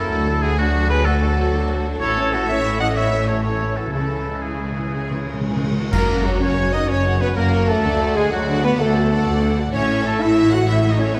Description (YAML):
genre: cinematic, heroic adventure film score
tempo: 126 BPM (dotted quarters)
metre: 12/8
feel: straight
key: unclear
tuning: A4 = 439 Hz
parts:
  - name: warm symphonic violin section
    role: melody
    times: 0.0-11.2 s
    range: F#4 to F#5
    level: -32 LUFS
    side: equal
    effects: none
  - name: bright oboe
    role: second line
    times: 0.0-11.2 s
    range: F#4 to F#5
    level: -28 LUFS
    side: equal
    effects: none
  - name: flute section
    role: second line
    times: 0.0-11.2 s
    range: F#4 to F#5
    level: -33 LUFS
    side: equal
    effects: none
  - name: warm symphonic violin section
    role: second line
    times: 0.0-11.2 s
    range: A#3 to F#5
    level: -34 LUFS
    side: equal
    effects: none
  - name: warm symphonic viola section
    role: accompaniment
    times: 0.0-11.2 s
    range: C#3 to A4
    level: -30 LUFS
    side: equal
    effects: none
  - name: mellow French horn section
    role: sustained chords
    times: 0.0-11.2 s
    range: E3 to F#4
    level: -25 LUFS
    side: equal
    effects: none
  - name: mellow trumpet section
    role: stabs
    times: 0.0-5.4 s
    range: D4 to D#5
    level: -29 LUFS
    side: equal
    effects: none
  - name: warm symphonic cello section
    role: bass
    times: 0.0-11.2 s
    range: D2 to C#3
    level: -27 LUFS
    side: equal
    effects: none
  - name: warm symphonic double bass section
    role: bass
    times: 0.0-11.2 s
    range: F#1 to D2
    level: -26 LUFS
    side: equal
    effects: none
  - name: cymbal swell, clash cymbals and concert bass drum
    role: percussion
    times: 2.0-6.5 s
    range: none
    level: -31 LUFS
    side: equal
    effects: none
  - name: timpani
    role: percussion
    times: 3.9-6.4 s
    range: F#2 to C#3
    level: -29 LUFS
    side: equal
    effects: none
room: moderate scoring stage reverb, RT60 1.8 s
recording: none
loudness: -19 LUFS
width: mono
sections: 0.0-5.9 A section; 5.9-11.2 B section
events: timpani fill 3.9-5.9; band accent 5.9-6.2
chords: 0.1 D; 2.0 A; 3.9 C#m; 5.9 F#; 7.8 D; 9.7 A